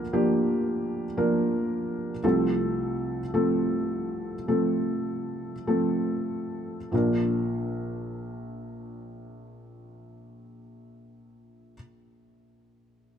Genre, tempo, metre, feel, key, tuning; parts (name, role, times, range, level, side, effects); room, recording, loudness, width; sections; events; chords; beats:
folk; 47-59 BPM; 4/4; straight; Bb major; A4 = 441 Hz
felt-muted upright piano; accompaniment; 0.0-13.2 s; Bb1 to Bb4; -26 LUFS; equal
light reverb; dark, warm production; -25 LUFS; side -8 dB against mid
0.0-6.9 A section; 6.9-12.0 B section
slowing down 0.0-6.9
0.0 Bb/D; 2.2 F/C; 6.9 Bb
0.14 1.18 | 2.24 3.34 4.48 5.68 | 6.93 8.19 9.45 10.71